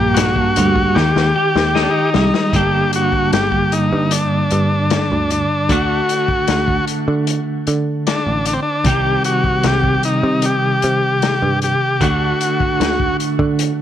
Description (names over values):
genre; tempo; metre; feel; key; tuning
psychedelic rock; 76 BPM; 4/4; straight; unclear; A4 = 441 Hz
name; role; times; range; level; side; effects
overdriven combo organ; melody; 0.0-13.2 s; C4 to G4; -18 LUFS; left 1 dB; tape echo
twelve-string electric guitar; riff; 0.0-13.8 s; G2 to A4; -18 LUFS; right 1 dB; tremolo
picked electric bass; bass; 0.0-13.7 s; G1 to D3; -20 LUFS; right 2 dB; none
vintage drum kit; drums; 0.2-13.8 s; hi-hat, kick drum, snare drum; -21 LUFS; left 5 dB; none
room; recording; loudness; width
light reverb, small room ambience; 1960s-style stereo; -14 LUFS; side -10 dB against mid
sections
0.0-2.5 A section; 2.5-13.8 B section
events
drum fill 1.0-2.5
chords
0.0 Gm; 1.0 Eb; 2.5 Gmadd9; 5.7 D; 8.9 Cm; 12.0 D